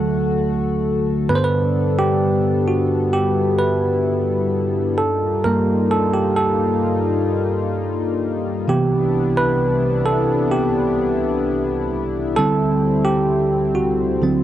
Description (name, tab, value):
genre	pop ballad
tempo	65 BPM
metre	4/4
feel	straight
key	G major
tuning	A4 = 437 Hz
part	bell-like tine electric piano	accompaniment	0.0-14.4 s	G2 to C5	-18 LUFS	right 2 dB	none
part	chorused pulse-width pad	sustained chords	0.0-14.4 s	C2 to A4	-22 LUFS	left 5 dB	none
room	digital ambience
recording	dry, close 1970s-style studio recording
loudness	-16 LUFS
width	side -12 dB against mid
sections	0.0-14.4 A section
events	tine electric piano solo 0.0-14.4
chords	0.0 D; 1.3 Gadd9; 5.0 Ebadd9/G; 8.7 Cmaj7; 12.4 D7sus4